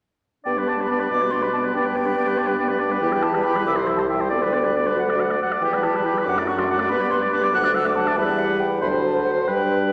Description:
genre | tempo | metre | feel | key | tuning
quick classical-period movement for wind quintet | 93 BPM (dotted quarters) | 6/8 | straight | G major | A4 = 441 Hz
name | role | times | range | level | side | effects
dark clarinet | accompaniment | 0.4-9.9 s | B3 to A4 | -33 LUFS | equal | none
mellow silver concert flute | melody | 0.5-9.9 s | D5 to F#6 | -28 LUFS | equal | none
warm oboe | second line | 0.5-9.9 s | G4 to F#5 | -26 LUFS | equal | none
mellow French horn | accompaniment | 0.5-9.9 s | E3 to B3 | -31 LUFS | equal | none
mellow bassoon | bass | 0.5-9.9 s | C2 to B2 | -26 LUFS | equal | none
room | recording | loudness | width
wet concert hall reverb, RT60 2.0 s | none | -21 LUFS | mono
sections
0.5-9.9 A section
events
none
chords
0.5 G; 1.1 G/B; 1.7 G; 3.0 Em; 3.7 C; 4.3 G/D; 5.0 D; 5.6 Em; 6.3 D/F#; 6.9 G; 7.5 D; 8.2 Em; 8.8 D7

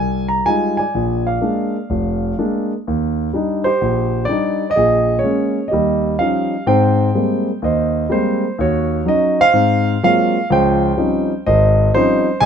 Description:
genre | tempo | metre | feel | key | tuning
solo jazz | 126 BPM | 4/4 | swing 66% on 8ths | Eb major, Ab major from 6.7 s | A4 = 440 Hz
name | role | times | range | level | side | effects
dark concert grand piano | solo | 0.0-12.5 s | F1 to Bb5 | -14 LUFS | equal | none
room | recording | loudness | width
light reverb | minimal, uncompressed stereo recording | -14 LUFS | side -7 dB against mid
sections
0.0-6.7 A section; 6.7-12.5 B section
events
none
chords
0.0 Fm9; 0.9 Bb7; 2.9 Ebmaj7; 4.8 Bbm7; 5.7 Eb9; 6.7 Abmaj9; 8.6 Ebm7; 9.5 Ab13; 10.5 Dbmaj9#11

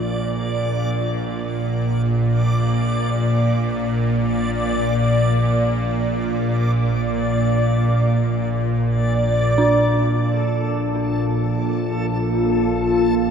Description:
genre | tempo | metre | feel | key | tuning
dark ambient drone | free time | none | none | Bb major | A4 = 441 Hz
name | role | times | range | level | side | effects
dark detuned synth bell | arpeggios | 0.0-13.3 s | D4 to Bb4 | -28 LUFS | left 2 dB | chorus, diffuse ambient delay
bowed-like drone | drone | 0.0-13.3 s | Bb1 to Bb2 | -19 LUFS | equal | built-in reverb
backwards swelling texture | texture | 0.0-13.3 s | A4 to D5 | -25 LUFS | equal | built-in reverb
deep dark ambient pad | sustained chords | 11.0-13.3 s | Bb3 to D5 | -21 LUFS | equal | chorus, built-in reverb
room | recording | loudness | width
wet cathedral reverb, RT60 5.9 s | in a vast, echoing space | -17 LUFS | side -7 dB against mid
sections
0.0-9.6 A section; 9.6-13.3 B section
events
none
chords
0.0 Bb

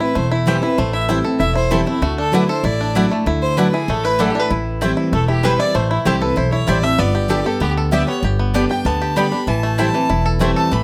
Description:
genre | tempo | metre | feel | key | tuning
bluegrass | 193 BPM | 4/4 | straight | A minor | A4 = 442 Hz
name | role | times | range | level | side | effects
clear fiddle | melody | 0.0-10.8 s | E4 to B5 | -25 LUFS | equal | none
picked steel-string acoustic guitar | accompaniment | 0.0-10.8 s | E2 to G4 | -23 LUFS | equal | none
bluegrass banjo | arpeggios | 0.0-10.8 s | E3 to A4 | -25 LUFS | equal | none
upright bass | bass | 0.2-10.8 s | E1 to D2 | -23 LUFS | equal | none
mandolin | stabs | 0.5-10.5 s | A3 to G5 | -25 LUFS | equal | none
lap resonator guitar | second line | 3.9-10.8 s | E4 to B5 | -28 LUFS | equal | none
room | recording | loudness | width
light reverb | close, detailed microphones | -17 LUFS | mono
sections
0.0-10.8 A section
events
none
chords
0.0 Am7; 2.0 Dadd9; 4.5 Am7; 7.0 G; 9.5 Am7

